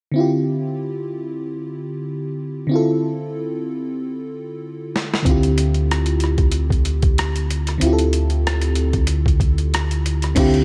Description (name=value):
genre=R&B, neo-soul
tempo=94 BPM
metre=4/4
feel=swing 56% on 16ths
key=D minor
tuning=A4 = 440 Hz
part: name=FM electric piano with soft pad layer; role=accompaniment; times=0.1-10.6 s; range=D3 to A4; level=-24 LUFS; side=equal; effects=chorus
part: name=boom bap sampler-style drum kit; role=drums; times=5.0-10.6 s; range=crash cymbal, hi-hat, kick drum, rim click, snare drum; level=-23 LUFS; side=equal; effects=none
part: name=deep dub fingered electric bass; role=bass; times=5.3-10.6 s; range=D2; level=-22 LUFS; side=equal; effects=none
room=light reverb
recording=none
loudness=-20 LUFS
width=mono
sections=0.1-10.4 A section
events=drum fill 4.0-5.3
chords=0.1 Dm11